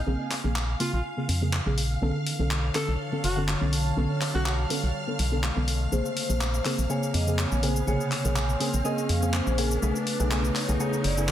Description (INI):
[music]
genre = deep house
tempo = 123 BPM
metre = 4/4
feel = swing 54% on 16ths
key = unclear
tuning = A4 = 441 Hz
[part]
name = deep mellow chord stab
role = stabs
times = 0.0-11.3 s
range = C3 to A4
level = -29 LUFS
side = equal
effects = chorus, digital delay
[part]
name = riser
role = sound effects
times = 1.1-11.3 s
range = none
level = -39 LUFS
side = equal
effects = none
[part]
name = airy breathy pad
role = texture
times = 0.0-11.3 s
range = D3 to A5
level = -38 LUFS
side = equal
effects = chorus, phaser
[part]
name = string machine, violins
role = texture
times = 0.0-11.3 s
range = F5 to F6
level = -39 LUFS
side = equal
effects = ensemble chorus
[part]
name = organ-like FM bass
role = bass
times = 0.1-11.3 s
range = F#1 to F2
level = -27 LUFS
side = equal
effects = none
[part]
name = deep house drum kit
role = drums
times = 0.3-11.3 s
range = cabasa, handclaps, hi-hat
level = -31 LUFS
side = left 1 dB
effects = overdrive
[part]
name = raspy alto saxophone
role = melody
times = 0.8-4.5 s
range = F4 to A4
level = -34 LUFS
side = equal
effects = digital delay
[part]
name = vibraphone with medium mallets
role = melody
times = 5.9-11.3 s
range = Bb4 to F5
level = -34 LUFS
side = equal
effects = none
[sound]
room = moderate plate reverb, RT60 1.2 s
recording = dense, heavily limited modern master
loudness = -24 LUFS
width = side -11 dB against mid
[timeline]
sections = 0.0-11.3 A section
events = build-up 0.0-11.3; filter sweep on synth stab 0.0-11.3; riser 1.1-11.3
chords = 0.0 Bbm9; 2.0 Bm9; 5.9 Bbm9; 9.8 Bsus2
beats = | 0.07 0.56 1.04 1.53 | 2.02 2.51 3.00 3.48 | 3.97 4.46 4.95 5.43 | 5.92 6.41 6.90 7.39 | 7.87 8.36 8.85 9.34 | 9.82 10.31 10.80 11.29